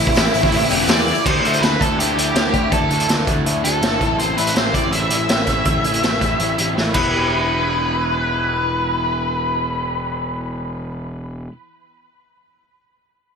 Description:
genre	indie rock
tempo	163 BPM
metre	4/4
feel	straight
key	E minor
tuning	A4 = 441 Hz
part	octave-fuzz lead guitar	melody	0.0-10.8 s	E4 to E5	-21 LUFS	equal	distortion, ping-pong delay
part	electric guitar through a small old amp	riff	0.0-11.5 s	A2 to E4	-25 LUFS	left 6 dB	ensemble chorus
part	overdriven electric guitar	riff	0.0-11.5 s	A2 to G4	-27 LUFS	right 7 dB	wide subtle chorus
part	fuzz picked electric bass	bass	0.0-11.5 s	E1 to E2	-25 LUFS	equal	overdrive
part	raw garage drum kit	drums	0.1-7.0 s	crash cymbal, hi-hat, kick drum, snare drum	-19 LUFS	equal	gated reverb
part	tambourine	percussion	0.1-1.2 s	none	-34 LUFS	left 11 dB	none
room	moderate lush hall reverb, RT60 1.9 s, small room ambience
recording	bright 1980s-style digital production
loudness	-16 LUFS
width	side -6 dB against mid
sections	0.0-1.3 A section; 1.3-7.1 B section; 7.1-10.1 C section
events	drum fill 6.8-7.1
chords	0.0 Am7; 1.3 Dsus2; 4.0 Am7; 6.9 Em

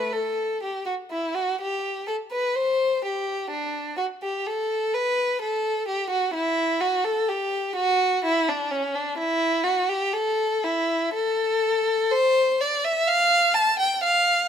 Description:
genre	classical, baroque-style suite movement for unaccompanied violin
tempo	63 BPM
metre	4/4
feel	rubato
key	unclear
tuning	A4 = 439 Hz
part	warm violin	solo	0.0-14.5 s	C#4 to A5	-21 LUFS	equal	none
room	moderate stone room reverb, RT60 1.3 s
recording	minimal, uncompressed stereo recording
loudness	-22 LUFS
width	side -8 dB against mid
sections	0.0-14.5 A section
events	none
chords	none

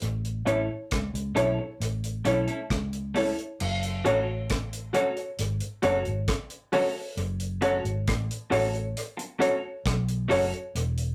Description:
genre	roots reggae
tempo	67 BPM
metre	4/4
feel	straight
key	F# minor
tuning	A4 = 437 Hz
part	vintage muted fingered electric bass	bass	0.0-11.1 s	E1 to C#2	-32 LUFS	equal	none
part	deep reggae drum kit	drums	0.0-11.1 s	crash cymbal, hi-hat, kick drum, rim click	-35 LUFS	equal	dub echo
part	semi-hollow electric guitar	accompaniment	0.5-10.4 s	A3 to A4	-34 LUFS	equal	none
part	dark upright piano	stabs	0.5-10.5 s	E4 to C#5	-28 LUFS	equal	none
room	wet studio ambience, RT60 0.5 s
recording	rough rehearsal-room recording, tube saturation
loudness	-28 LUFS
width	mono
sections	0.0-3.6 A section; 3.6-11.1 B section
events	none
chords	0.0 A; 3.6 F#m

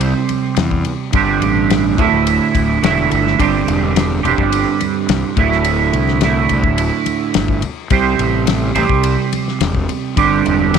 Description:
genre	psychedelic rock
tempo	106 BPM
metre	4/4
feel	straight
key	unclear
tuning	A4 = 441 Hz
part	twangy electric guitar	riff	0.0-10.8 s	D2 to C5	-15 LUFS	right 9 dB	rotary speaker
part	fuzz fingered electric bass	bass	0.0-10.8 s	D1 to E2	-19 LUFS	left 2 dB	overdrive
part	damped 70s drum kit	drums	0.0-10.8 s	kick drum, ride cymbal, snare drum	-21 LUFS	left 7 dB	none
part	congas	percussion	0.3-10.7 s	none	-30 LUFS	left 10 dB	none
room	little or no reverb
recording	1960s-style stereo with parts hard left and right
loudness	-13 LUFS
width	side -7 dB against mid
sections	0.0-10.8 A section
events	none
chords	0.0 C5; 1.1 Gsus4; 2.0 Dsus2; 3.4 Gsus4; 5.4 Dsus2; 7.9 C5; 10.2 Gsus4

